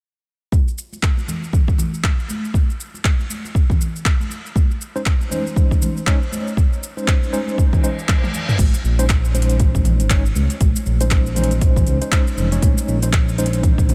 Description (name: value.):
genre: afro house.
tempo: 119 BPM.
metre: 4/4.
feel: swing 59% on 16ths.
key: unclear.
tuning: A4 = 438 Hz.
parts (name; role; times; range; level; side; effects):
deep house drum kit; drums; 0.5-13.9 s; crash cymbal, handclaps, hi-hat, shaker, toms; -29 LUFS; equal; small room ambience.
electronic kick drum; drums; 0.5-13.9 s; none; -18 LUFS; equal; small room ambience.
congas; percussion; 0.5-13.9 s; none; -30 LUFS; equal; none.
tine electric piano; stabs; 5.0-13.9 s; Ab3 to Db5; -28 LUFS; equal; medium tremolo, sidechain pumping, diffuse ambient delay.
reverse cymbal; sound effects; 7.8-8.6 s; none; -33 LUFS; equal; none.
smooth synth bass; bass; 8.6-13.9 s; F1 to Db2; -21 LUFS; equal; sidechain pumping.
room: digital ambience.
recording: none.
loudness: -18 LUFS.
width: mono.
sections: 0.5-8.6 A section; 8.6-13.9 B section.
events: reverse cymbal 7.8-8.6; drum fill 8.1-8.6.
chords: 0.5 Abadd11; 8.6 Bbm11.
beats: | 0.52 1.03 1.53 2.04 | 2.54 3.04 3.55 4.05 | 4.56 5.06 5.57 6.07 | 6.57 7.08 7.58 8.09 | 8.59 9.09 9.60 10.10 | 10.61 11.11 11.62 12.12 | 12.62 13.13 13.63.